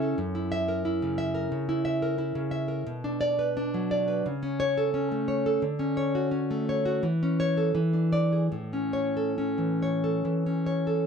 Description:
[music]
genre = romantic piece for solo classical guitar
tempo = 69-92 BPM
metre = 4/4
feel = rubato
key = A major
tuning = A4 = 439 Hz
[part]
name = nylon-string guitar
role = solo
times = 0.0-11.1 s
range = F#2 to E5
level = -25 LUFS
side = equal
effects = none
[sound]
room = moderate studio reverb, RT60 0.8 s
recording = dark, warm production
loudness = -25 LUFS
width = side -6 dB against mid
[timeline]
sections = 0.0-11.1 A section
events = none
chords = 0.2 F#7; 2.9 Bm; 4.3 A/C#; 5.6 Dmaj7; 7.0 A/E; 7.8 E7; 8.5 A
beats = | 0.18 0.85 1.51 2.18 | 2.87 3.56 4.26 4.94 | 5.63 6.33 7.04 7.76 | 8.55 9.41 10.27

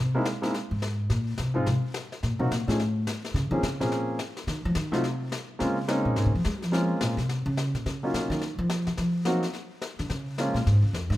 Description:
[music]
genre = jazz piano trio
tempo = 213 BPM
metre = 4/4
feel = swing 62% on 8ths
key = Bb minor, Eb minor from 7.9 s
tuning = A4 = 436 Hz
[part]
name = upright bass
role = bass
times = 0.0-11.2 s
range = Db2 to Ab3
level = -26 LUFS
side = equal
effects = none
[part]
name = warm baby grand piano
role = melody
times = 0.1-10.6 s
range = F3 to Ab4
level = -28 LUFS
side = equal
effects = none
[part]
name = snare drum and brushed snare drum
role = drums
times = 0.3-11.2 s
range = none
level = -36 LUFS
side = left 3 dB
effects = none
[sound]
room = light reverb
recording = minimal, uncompressed stereo recording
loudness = -25 LUFS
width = side -15 dB against mid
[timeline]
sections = 0.0-7.9 A section; 7.9-11.2 A section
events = upright bass solo 0.0-11.2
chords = 0.0 C(#5, no3); 1.1 Fm (rootless); 2.2 Cm7b5; 2.8 N.C.; 3.4 Bbm7; 4.5 Cm; 5.0 N.C.; 5.6 Bbm9; 7.9 Ebm9; 9.0 Cm7b5; 9.5 N.C.; 10.1 Bbm7 (rootless)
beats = 0.26 0.54 0.82 | 1.10 1.38 1.66 1.94 | 2.23 2.51 2.79 3.07 | 3.35 3.63 3.91 4.20 | 4.48 4.76 5.04 5.32 | 5.60 5.88 6.16 6.45 | 6.73 7.01 7.29 7.57 | 7.85 8.13 8.41 8.70 | 8.98 9.26 9.54 9.82 | 10.11 10.39 10.67 10.95

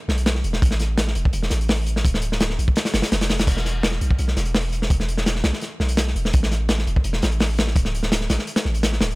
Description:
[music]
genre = drum and bass, jungle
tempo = 168 BPM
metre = 4/4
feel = straight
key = unclear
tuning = A4 = 440 Hz
[part]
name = long sustained 808-style bass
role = bass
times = 0.1-9.2 s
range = D1 to B1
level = -22 LUFS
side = equal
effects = none
[part]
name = crunchy breakbeat drum kit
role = drums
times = 0.1-9.2 s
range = crash cymbal, hi-hat, kick drum, snare drum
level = -21 LUFS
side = equal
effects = none
[sound]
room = little or no reverb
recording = none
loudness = -19 LUFS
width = side -23 dB against mid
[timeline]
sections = 0.0-3.5 A section; 3.5-9.2 A section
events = drop 0.0-3.5, 3.5-9.2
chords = none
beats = 0.26 | 0.62 0.98 1.33 1.69 | 2.05 2.40 2.76 3.12 | 3.48 3.83 4.19 4.55 | 4.90 5.26 5.62 5.98 | 6.33 6.69 7.05 7.40 | 7.76 8.12 8.48 8.83

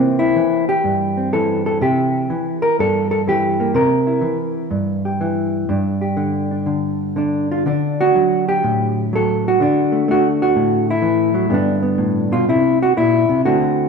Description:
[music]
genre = solo jazz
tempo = 124 BPM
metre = 4/4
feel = swing 67% on 8ths, rubato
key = unclear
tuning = A4 = 441 Hz
[part]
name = hollow-body jazz guitar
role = solo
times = 0.0-13.9 s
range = G2 to Bb4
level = -15 LUFS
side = equal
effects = none
[sound]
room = moderate lush hall reverb, RT60 2.2 s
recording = rough home demo mix, small room ambience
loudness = -15 LUFS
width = side -5 dB against mid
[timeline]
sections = 0.0-13.9 A section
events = none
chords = 0.0 C7; 5.7 G5; 7.7 D; 11.5 G; 12.5 C7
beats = 0.36 0.85 1.34 | 1.83 2.31 2.80 3.28 | 3.76 4.24 4.72 5.20 | 5.69 6.17 6.67 7.17 | 7.67 8.16 8.64 9.13 | 9.62 10.09 10.57 11.04 | 11.53 12.01 12.50 12.98 | 13.47

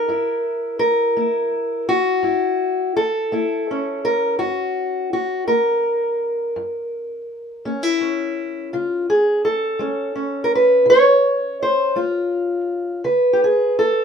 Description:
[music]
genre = acoustic country blues, solo or duo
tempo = 56 BPM (dotted quarters)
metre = 12/8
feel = straight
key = F# mixolydian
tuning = A4 = 441 Hz
[part]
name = fingerpicked steel-string acoustic guitar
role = solo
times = 0.0-14.0 s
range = F#2 to C#5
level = -17 LUFS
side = equal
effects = none
[sound]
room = moderate small room reverb, RT60 0.6 s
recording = minimal, uncompressed stereo recording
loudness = -17 LUFS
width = side -7 dB against mid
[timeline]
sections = 0.0-14.0 A section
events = none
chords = 0.1 F#7; 8.7 C#7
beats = | 0.09 1.18 2.26 3.34 | 4.42 5.50 6.57 7.65 | 8.73 9.81 10.88 11.96 | 13.04

